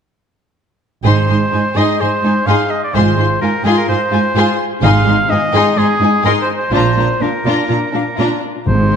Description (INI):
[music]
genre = cinematic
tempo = 127 BPM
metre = 4/4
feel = straight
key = Ab lydian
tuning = A4 = 439 Hz
[part]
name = warm symphonic violin section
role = melody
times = 1.0-9.0 s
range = F5 to C6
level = -24 LUFS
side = left 5 dB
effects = none
[part]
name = warm symphonic violin section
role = second line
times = 1.0-9.0 s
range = D4 to Ab4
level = -21 LUFS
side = left 4 dB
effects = none
[part]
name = rich symphonic cello section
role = bass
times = 1.0-9.0 s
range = Ab2 to Bb2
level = -17 LUFS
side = right 2 dB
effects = none
[part]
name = warm symphonic double bass section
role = bass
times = 1.0-9.0 s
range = Ab1 to Bb1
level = -18 LUFS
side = right 4 dB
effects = none
[part]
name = bright oboe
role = second line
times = 1.1-9.0 s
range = Ab4 to F5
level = -17 LUFS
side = equal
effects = none
[part]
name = rich symphonic viola section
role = accompaniment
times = 1.1-9.0 s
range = C4 to F4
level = -21 LUFS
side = left 1 dB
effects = none
[part]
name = timpani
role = percussion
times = 4.8-5.5, 8.7-9.0 s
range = Ab2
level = -21 LUFS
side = left 1 dB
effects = none
[sound]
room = moderate concert hall reverb, RT60 2.1 s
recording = dark, warm production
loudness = -12 LUFS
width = side -7 dB against mid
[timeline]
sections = 1.1-9.0 A section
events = none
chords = 1.1 Ab; 2.9 Fm/Ab; 4.8 Ab; 6.7 Bb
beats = | 1.05 1.53 2.00 2.48 | 2.94 3.42 3.89 4.36 | 4.83 5.30 5.77 6.25 | 6.73 7.21 7.69 8.18 | 8.67